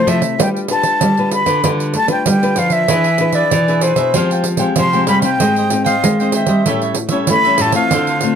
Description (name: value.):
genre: samba and choro.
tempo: 96 BPM.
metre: 4/4.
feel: straight.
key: unclear.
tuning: A4 = 443 Hz.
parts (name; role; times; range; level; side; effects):
breathy concert flute; melody; 0.0-8.4 s; C5 to C6; -16 LUFS; left 1 dB; slapback echo.
nylon-string guitar; accompaniment; 0.0-8.4 s; Ab2 to B4; -20 LUFS; left 5 dB; none.
nylon-string guitar; bass; 0.0-8.4 s; A2 to A3; -18 LUFS; right 1 dB; none.
pandeiro; percussion; 0.1-8.4 s; none; -19 LUFS; right 6 dB; none.
cavaquinho; accompaniment; 2.9-8.3 s; D4 to G5; -23 LUFS; right 4 dB; none.
room: light reverb.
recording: none.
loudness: -12 LUFS.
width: side -8 dB against mid.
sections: 0.0-8.4 A section.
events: none.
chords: 0.4 G7; 2.9 E7; 4.2 Fmadd9; 5.4 Abmaj7; 6.7 A7.